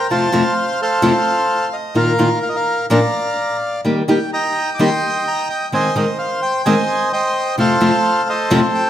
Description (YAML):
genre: tango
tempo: 129 BPM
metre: 4/4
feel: rubato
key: unclear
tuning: A4 = 440 Hz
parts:
  - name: bandoneon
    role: melody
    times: 0.0-8.9 s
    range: A4 to D6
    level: -17 LUFS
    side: equal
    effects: none
  - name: nylon-string guitar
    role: accompaniment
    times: 0.1-8.6 s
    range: F2 to G4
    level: -17 LUFS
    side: left 1 dB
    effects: none
room: moderate recital hall reverb, RT60 1.7 s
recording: none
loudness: -14 LUFS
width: side -11 dB against mid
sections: 0.0-8.9 A section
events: none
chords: 0.1 F; 2.0 Bbsus4; 2.9 Bb; 3.8 Eb; 5.7 Ab/Eb; 7.6 F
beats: | 0.10 0.56 1.02 1.49 | 1.95 2.42 2.89 3.36 | 3.84 4.32 4.79 5.25 | 5.72 6.18 6.65 7.12 | 7.58 8.04 8.50